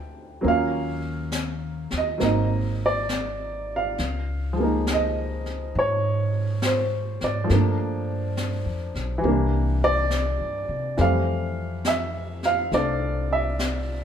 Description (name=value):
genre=jazz ballad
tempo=69 BPM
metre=4/4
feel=swing 68% on 8ths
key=unclear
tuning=A4 = 441 Hz
part: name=warm upright piano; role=accompaniment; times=0.0-14.0 s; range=E3 to G5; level=-24 LUFS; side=right 1 dB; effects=none
part: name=upright bass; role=bass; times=0.0-14.0 s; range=Ab1 to C3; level=-26 LUFS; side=equal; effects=none
part: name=jazz brush drum kit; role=drums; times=0.4-14.0 s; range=brushed snare drum, hi-hat, snare drum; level=-31 LUFS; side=left 2 dB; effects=none
room=moderate large studio reverb, RT60 1.3 s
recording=band playing live in one room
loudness=-22 LUFS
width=side -8 dB against mid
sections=0.0-14.0 A section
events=none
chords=0.4 Ebm7; 2.2 Ab9; 4.0 Db69; 7.5 Gm9; 9.2 C9; 11.0 Fmaj9